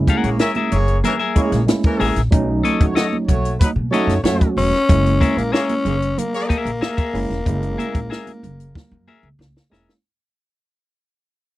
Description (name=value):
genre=funk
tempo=93 BPM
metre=4/4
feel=straight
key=F# mixolydian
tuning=A4 = 439 Hz
part: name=tine electric piano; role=stabs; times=0.0-10.0 s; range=F#3 to F#4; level=-22 LUFS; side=right 2 dB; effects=overdrive
part: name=upright bass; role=bass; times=0.0-9.9 s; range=E1 to B2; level=-21 LUFS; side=equal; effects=none
part: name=clean electric guitar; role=accompaniment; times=0.1-9.9 s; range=G#4 to F#5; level=-23 LUFS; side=left 6 dB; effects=none
part: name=compact cocktail drum kit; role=drums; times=0.1-10.0 s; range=hi-hat, kick drum, snare drum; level=-18 LUFS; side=equal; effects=none
part: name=congas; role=percussion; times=0.1-9.5 s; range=none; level=-28 LUFS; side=right 4 dB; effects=none
part: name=warm horn section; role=second line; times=0.2-6.5 s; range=E3 to E5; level=-24 LUFS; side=right 1 dB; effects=none
part: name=growling tenor saxophone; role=melody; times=4.6-9.4 s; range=A#3 to C#4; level=-22 LUFS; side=left 2 dB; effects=none
room=little or no reverb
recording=dry, close 1970s-style studio recording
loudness=-16 LUFS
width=side -16 dB against mid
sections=0.0-4.9 A section; 4.9-10.0 B section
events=fade-out 4.9-10.0; drum fill 8.7-10.0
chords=0.0 F#9; 2.3 B9; 4.9 F#9